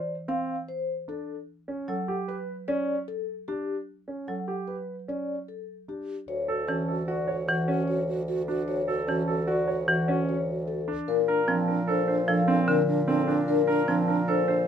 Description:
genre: classical, minimalist pattern music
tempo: 150 BPM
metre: 6/4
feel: straight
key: D major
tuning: A4 = 440 Hz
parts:
  - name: vibraphone with soft mallets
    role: melody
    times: 0.0-14.5 s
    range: G4 to A5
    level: -30 LUFS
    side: left 6 dB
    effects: none
  - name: dark concert grand piano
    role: arpeggios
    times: 0.0-14.7 s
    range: C4 to C#5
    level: -30 LUFS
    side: right 2 dB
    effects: none
  - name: marimba with hard mallets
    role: accompaniment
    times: 1.9-14.1 s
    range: D3 to F#3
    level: -30 LUFS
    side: right 1 dB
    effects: none
  - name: mellow hollow wooden-headed alto flute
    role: second line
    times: 6.3-14.6 s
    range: D4 to F#4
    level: -31 LUFS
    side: right 5 dB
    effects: none
  - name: warm bassoon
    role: bass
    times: 6.3-14.7 s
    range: D2 to Bb2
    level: -32 LUFS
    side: right 1 dB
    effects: none
room: little or no reverb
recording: close, detailed microphones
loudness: -25 LUFS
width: side -8 dB against mid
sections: 0.0-6.3 A section; 6.3-14.7 B section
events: none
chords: 0.0 F5 (rootless); 1.5 Gmaj9; 6.3 Dmaj7; 11.1 Bbmaj7

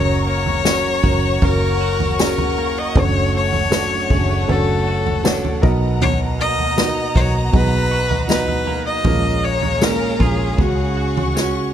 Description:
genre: pop ballad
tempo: 78 BPM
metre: 4/4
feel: straight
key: F# major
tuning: A4 = 440 Hz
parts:
  - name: clear cello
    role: melody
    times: 0.0-11.7 s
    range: F#4 to D#5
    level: -22 LUFS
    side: left 4 dB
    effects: none
  - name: dark upright piano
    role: accompaniment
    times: 0.0-11.7 s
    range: A#2 to D#5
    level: -23 LUFS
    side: right 3 dB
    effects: none
  - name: warm studio string section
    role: sustained chords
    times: 0.0-11.7 s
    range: A3 to C#6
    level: -27 LUFS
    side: left 2 dB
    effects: none
  - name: twelve-string electric guitar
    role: arpeggios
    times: 0.0-11.7 s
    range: F#2 to F#4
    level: -29 LUFS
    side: right 7 dB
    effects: none
  - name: vintage muted fingered electric bass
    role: bass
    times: 0.0-11.7 s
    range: F#1 to C#2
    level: -22 LUFS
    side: equal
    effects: none
  - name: unplugged drum kit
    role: drums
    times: 0.5-11.5 s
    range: kick drum, snare drum, toms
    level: -20 LUFS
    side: equal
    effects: none
  - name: tambourine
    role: percussion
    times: 0.7-11.5 s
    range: none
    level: -32 LUFS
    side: left 6 dB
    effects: none
room: small room ambience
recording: none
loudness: -15 LUFS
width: side -10 dB against mid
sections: 0.0-11.7 A section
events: drum fill 11.4-11.7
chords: 0.0 F#; 3.0 Dmaj7/F#; 5.6 Bmaj7; 9.0 A#m7; 10.6 C#sus4

